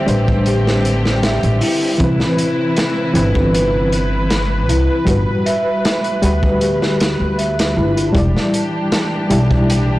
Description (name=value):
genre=trip hop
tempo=78 BPM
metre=4/4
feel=straight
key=E minor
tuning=A4 = 442 Hz
part: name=overdriven reed electric piano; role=accompaniment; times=0.0-10.0 s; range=E3 to D5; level=-20 LUFS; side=left 1 dB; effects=tremolo, tape echo
part: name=rich symphonic string section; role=sustained chords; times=0.0-10.0 s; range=C3 to B4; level=-22 LUFS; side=equal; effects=vintage 12-bit sampler grit
part: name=large celesta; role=arpeggios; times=0.0-8.2 s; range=E4 to E5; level=-21 LUFS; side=right 1 dB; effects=tape echo
part: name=upright bass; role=bass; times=0.1-10.0 s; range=E1 to D2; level=-18 LUFS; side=equal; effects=none
part: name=crunchy breakbeat drum kit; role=drums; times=0.1-9.9 s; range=hi-hat, kick drum, snare drum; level=-20 LUFS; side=equal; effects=none
room=light reverb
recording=blown-out, overdriven recording, vinyl crackle, overdrive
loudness=-13 LUFS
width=side -17 dB against mid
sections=0.0-8.2 A section; 8.2-10.0 B section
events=kick drops out 6.6-8.2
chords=0.0 D7sus4; 2.0 Cmaj7; 5.1 Gmaj7; 8.2 Em7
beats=0.46 1.23 | 2.00 2.77 3.54 4.31 | 5.08 5.84 6.61 7.38 | 8.15 8.92 9.69